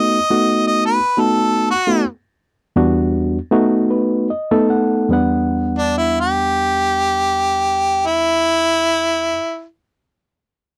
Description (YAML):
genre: blues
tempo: 72-89 BPM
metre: 4/4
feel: swing 55% on 16ths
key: E minor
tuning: A4 = 440 Hz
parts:
  - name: bright harmonica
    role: melody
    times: 0.0-9.6 s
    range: D4 to D#5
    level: -18 LUFS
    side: equal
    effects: overdrive
  - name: overdriven reed electric piano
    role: accompaniment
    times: 0.0-9.4 s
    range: E2 to F#5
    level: -19 LUFS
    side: equal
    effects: none
room: light reverb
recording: dry, close 1970s-style studio recording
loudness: -17 LUFS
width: mono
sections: 0.0-5.1 A section; 5.1-8.5 B section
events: slowing down 0.0-5.1; reed electric piano fill 3.5-5.1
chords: 0.0 B7; 2.0 Em7; 3.5 B7; 5.1 Em7